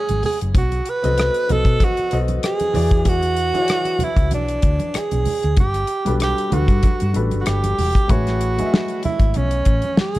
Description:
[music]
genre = lush 1970s-style soul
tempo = 95 BPM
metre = 4/4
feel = swing 54% on 16ths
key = unclear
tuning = A4 = 439 Hz
[part]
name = breathy tenor saxophone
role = melody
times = 0.0-10.2 s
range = C#4 to B4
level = -21 LUFS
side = right 2 dB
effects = none
[part]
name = warm grand piano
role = accompaniment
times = 0.0-10.2 s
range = E3 to E5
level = -27 LUFS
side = left 4 dB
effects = none
[part]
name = hollow-body short-scale fingered electric bass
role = bass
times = 0.1-10.2 s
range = E1 to B2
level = -21 LUFS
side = equal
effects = none
[part]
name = damped 70s drum kit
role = drums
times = 0.1-10.2 s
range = hi-hat, kick drum, rim click, snare drum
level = -19 LUFS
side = equal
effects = none
[part]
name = congas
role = percussion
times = 0.1-10.2 s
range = none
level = -29 LUFS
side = right 3 dB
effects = none
[sound]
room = small room ambience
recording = dark, warm production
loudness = -16 LUFS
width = side -17 dB against mid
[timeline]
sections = 0.0-10.2 A section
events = none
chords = 0.0 Amaj7; 0.5 B7b9; 2.7 E7; 5.6 Gmaj7; 8.1 Amaj7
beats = | 0.54 1.17 1.80 2.43 | 3.06 3.69 4.32 4.95 | 5.58 6.21 6.83 7.46 | 8.09 8.72 9.35 9.98

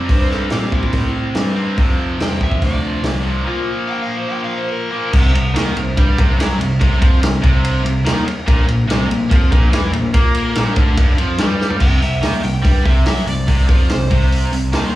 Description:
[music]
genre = blues rock power trio and southern rock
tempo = 143 BPM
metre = 4/4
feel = straight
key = C mixolydian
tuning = A4 = 440 Hz
[part]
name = overdriven slide guitar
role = melody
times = 0.0-5.1, 11.8-15.0 s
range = E4 to C6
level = -26 LUFS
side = equal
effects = slapback echo
[part]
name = tight distorted guitar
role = riff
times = 0.0-14.9 s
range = F2 to C4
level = -20 LUFS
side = equal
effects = distortion, slapback echo
[part]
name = fuzz picked electric bass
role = bass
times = 0.0-14.9 s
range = G1 to Bb2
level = -19 LUFS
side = equal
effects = overdrive
[part]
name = vintage drum kit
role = drums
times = 0.1-14.8 s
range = crash cymbal, hi-hat, kick drum, ride cymbal, snare drum, toms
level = -16 LUFS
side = equal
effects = none
[sound]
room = small room ambience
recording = live gig heard through the venue's PA, club reverb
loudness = -14 LUFS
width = side -15 dB against mid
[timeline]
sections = 0.0-5.1 A section; 5.1-11.8 B section; 11.8-15.0 C section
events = break 3.5-5.1; drum fill 11.6; electric slide guitar solo 11.8-15.0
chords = 0.0 C; 1.8 F5; 3.5 Bb5; 5.1 C5; 8.5 Bb5; 11.8 C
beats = | 0.09 0.51 0.93 1.35 | 1.77 2.20 2.62 3.04 | 3.46 3.88 4.30 4.72 | 5.13 5.55 5.97 6.39 | 6.81 7.22 7.64 8.06 | 8.47 8.89 9.31 9.72 | 10.14 10.56 10.97 11.39 | 11.81 12.23 12.65 13.07 | 13.48 13.90 14.32 14.74

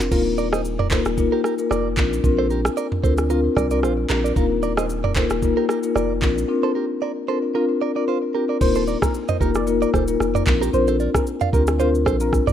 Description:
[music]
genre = afrobeats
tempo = 113 BPM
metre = 4/4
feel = swing 55% on 16ths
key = unclear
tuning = A4 = 440 Hz
[part]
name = marimba with soft mallets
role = accompaniment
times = 0.0-12.5 s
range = Bb3 to Bb4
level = -21 LUFS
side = left 4 dB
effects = none
[part]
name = punchy sub bass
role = bass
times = 0.0-12.5 s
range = Eb1 to D2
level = -24 LUFS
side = right 1 dB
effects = none
[part]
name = afro-pop drum kit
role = drums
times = 0.0-12.5 s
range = crash cymbal, handclaps, kick drum, rim click, shaker, snare drum, toms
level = -23 LUFS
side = right 1 dB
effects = none
[part]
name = direct-recorded clean electric guitar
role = riff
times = 0.1-12.5 s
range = F4 to F5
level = -27 LUFS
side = right 9 dB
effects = ping-pong delay
[part]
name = soft struck synth lead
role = melody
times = 8.6-12.3 s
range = Bb4 to D5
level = -28 LUFS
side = equal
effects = chorus, phaser
[sound]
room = light reverb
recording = rough home demo mix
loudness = -18 LUFS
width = side -10 dB against mid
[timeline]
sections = 0.1-8.6 A section; 8.6-12.5 B section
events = none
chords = 0.1 Ebsus2; 2.0 Bbadd9; 4.4 Ebsus2; 6.2 Bbadd9; 8.6 Ebsus2; 10.5 Bbadd9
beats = | 0.12 0.65 1.18 1.71 | 2.24 2.77 3.30 3.83 | 4.36 4.89 5.42 5.96 | 6.49 7.02 7.55 8.08 | 8.61 9.14 9.67 10.20 | 10.73 11.27 11.80 12.33

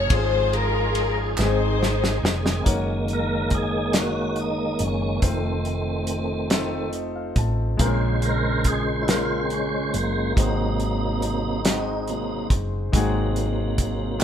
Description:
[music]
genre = slow gospel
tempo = 47 BPM (dotted quarters)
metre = 6/8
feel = straight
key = unclear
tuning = A4 = 442 Hz
[part]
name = dark studio string section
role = melody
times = 0.0-2.6 s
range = Eb4 to Db5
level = -24 LUFS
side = left 4 dB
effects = none
[part]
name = warm concert grand piano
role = accompaniment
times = 0.0-14.2 s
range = Ab2 to A5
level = -30 LUFS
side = left 4 dB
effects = none
[part]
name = tonewheel organ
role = sustained chords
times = 0.0-14.2 s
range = C3 to C5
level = -26 LUFS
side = right 1 dB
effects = slow rotary speaker, chorus vibrato
[part]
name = hollow-body short-scale fingered electric bass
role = bass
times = 0.0-14.2 s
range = F1 to Bb1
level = -26 LUFS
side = equal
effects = none
[part]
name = warm soul drum kit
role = drums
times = 0.1-14.2 s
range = hi-hat, kick drum, ride cymbal, snare drum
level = -23 LUFS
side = equal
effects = none
[part]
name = group handclap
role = percussion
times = 1.4-1.8, 14.2 s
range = none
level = -30 LUFS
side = right 4 dB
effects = none
[part]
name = mellow French horn section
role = sustained chords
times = 2.7-14.2 s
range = Db4 to Eb5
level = -34 LUFS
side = left 1 dB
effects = none
[sound]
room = moderate studio reverb, RT60 0.8 s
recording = band playing live in one room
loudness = -21 LUFS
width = side -9 dB against mid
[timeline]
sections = 0.0-2.7 A section; 2.7-14.2 B section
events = drum fill 1.4-2.7; tonewheel organ solo 2.7-14.2; grand piano fill 6.5-7.8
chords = 0.1 Db/Ab; 1.4 Ab; 2.7 Gb6; 5.2 F7; 7.8 Bbm7; 10.4 Ab7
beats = | 0.10 1.39 | 2.67 3.95 | 5.23 6.52 | 7.80 9.08 | 10.37 11.65 | 12.93 14.21

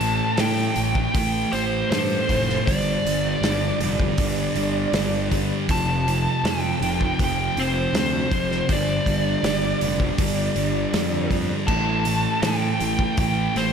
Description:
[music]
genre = quiet-loud alternative rock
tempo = 80 BPM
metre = 4/4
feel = straight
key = unclear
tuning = A4 = 442 Hz
[part]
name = dark smooth lead guitar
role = melody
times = 0.0-13.7 s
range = C5 to A5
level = -25 LUFS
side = right 1 dB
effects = overdrive, slapback echo, tape echo
[part]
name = thick fuzz guitar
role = riff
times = 0.0-13.7 s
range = F2 to A3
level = -27 LUFS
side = left 9 dB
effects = distortion
[part]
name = thick fuzz guitar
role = riff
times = 0.0-13.7 s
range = F2 to A3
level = -27 LUFS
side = right 8 dB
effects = distortion
[part]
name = fuzz fingered electric bass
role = bass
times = 0.0-13.7 s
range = F1 to A2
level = -28 LUFS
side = equal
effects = overdrive
[part]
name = loose indie drum kit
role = drums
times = 0.0-13.7 s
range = crash cymbal, hi-hat, kick drum, snare drum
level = -27 LUFS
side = equal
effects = none
[sound]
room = moderate lush hall reverb, RT60 2.5 s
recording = big arena sound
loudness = -20 LUFS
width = side -7 dB against mid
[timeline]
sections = 0.0-13.7 A section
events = none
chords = 0.0 Am7; 2.7 G5; 5.7 F; 8.7 G5; 11.7 A7(no3)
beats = 0.38 1.15 1.91 | 2.67 3.42 4.18 4.93 | 5.69 6.44 7.19 7.94 | 8.69 9.44 10.19 10.94 | 11.69 12.43 13.18

